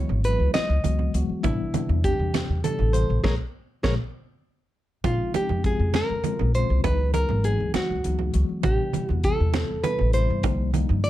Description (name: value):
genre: electric jazz fusion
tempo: 67 BPM (dotted quarters)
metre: 6/8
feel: straight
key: unclear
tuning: A4 = 440 Hz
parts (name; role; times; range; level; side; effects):
- nylon-string guitar; melody; 0.0-11.1 s; E4 to Eb5; -27 LUFS; equal; slapback echo
- tine electric piano; accompaniment; 0.0-11.1 s; C3 to Gb4; -30 LUFS; left 3 dB; overdrive, fast stereo tremolo, phaser
- upright bass; bass; 0.0-11.1 s; Ab1 to G2; -24 LUFS; equal; none
- congas; percussion; 0.1-11.0 s; none; -30 LUFS; right 10 dB; none
- modern studio drum kit; drums; 0.2-11.1 s; hi-hat, kick drum, snare drum; -29 LUFS; equal; none
room: light reverb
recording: dark, warm production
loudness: -21 LUFS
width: side -14 dB against mid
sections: 0.0-5.0 A section; 5.0-11.1 A section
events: drum fill 3.2-5.0; band accent 3.2-5.0; tine electric piano fill 4.1-5.0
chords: 0.0 Dbm11; 1.4 Am11; 3.2 Bb7(no3); 5.0 Bbm11; 6.8 Dbm11; 8.6 Am11; 10.4 Cm11